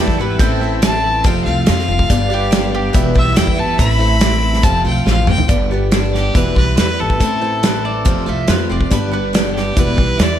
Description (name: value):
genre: folk rock and heartland rock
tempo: 141 BPM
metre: 4/4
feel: straight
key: G mixolydian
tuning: A4 = 439 Hz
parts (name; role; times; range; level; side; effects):
- clear fiddle; melody; 0.0-10.4 s; G4 to B5; -20 LUFS; left 2 dB; slapback echo
- bowl-back mandolin; second line; 0.0-3.0, 7.7-9.4 s; C4 to E5; -25 LUFS; right 3 dB; slapback echo
- picked steel-string acoustic guitar; accompaniment; 0.0-10.4 s; E2 to G4; -23 LUFS; left 4 dB; none
- warm baby grand piano; accompaniment; 0.0-10.4 s; D4 to F5; -29 LUFS; right 8 dB; slapback echo
- warm chamber string section; sustained chords; 0.0-5.5 s; B3 to G5; -27 LUFS; left 1 dB; none
- twelve-string electric guitar; riff; 0.0-10.4 s; E2 to G4; -22 LUFS; right 4 dB; tremolo
- upright bass; bass; 0.0-10.4 s; E1 to F2; -19 LUFS; equal; none
- natural country drum kit; drums; 0.1-10.3 s; hi-hat, kick drum, snare drum, toms; -16 LUFS; equal; none
room: light reverb, small room ambience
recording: none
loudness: -13 LUFS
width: side -10 dB against mid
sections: 0.0-5.5 A section; 5.5-10.4 B section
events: fiddle solo 0.0-5.5; drum fill 5.1-5.5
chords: 0.4 Am; 1.3 F; 2.1 G; 2.9 Em; 3.8 Am; 4.6 F; 5.5 G; 6.4 Em; 7.2 Am; 8.1 F; 8.9 G; 9.8 Em